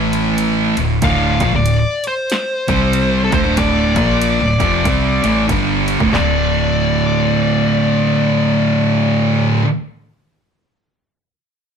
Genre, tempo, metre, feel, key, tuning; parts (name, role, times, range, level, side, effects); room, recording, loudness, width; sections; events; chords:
stoner and doom metal; 94 BPM; 4/4; swing 60% on 8ths; D minor; A4 = 440 Hz
fuzz guitar; riff; 0.0-9.7 s; D2 to C4; -21 LUFS; equal; distortion
thick fuzz guitar; riff; 0.0-9.7 s; D2 to C4; -20 LUFS; left 7 dB; distortion
thick fuzz guitar; riff; 0.0-9.7 s; D2 to C4; -17 LUFS; right 6 dB; distortion
vintage muted fingered electric bass; bass; 0.0-9.5 s; D1 to D2; -23 LUFS; equal; overdrive
punchy analog drum machine; drums; 0.1-6.3 s; handclaps, kick drum, ride cymbal, snare drum, toms; -22 LUFS; equal
fuzz lead guitar; melody; 1.0-9.4 s; A4 to F5; -20 LUFS; left 3 dB; distortion
moderate studio reverb, RT60 0.7 s; band playing live in one room; -13 LUFS; side -7 dB against mid
0.0-6.1 A section; 6.1-8.7 B section
kick and snare drop out 4.8-6.1
0.0 A5; 0.7 Dm; 2.6 C5; 3.3 Dm; 6.1 D5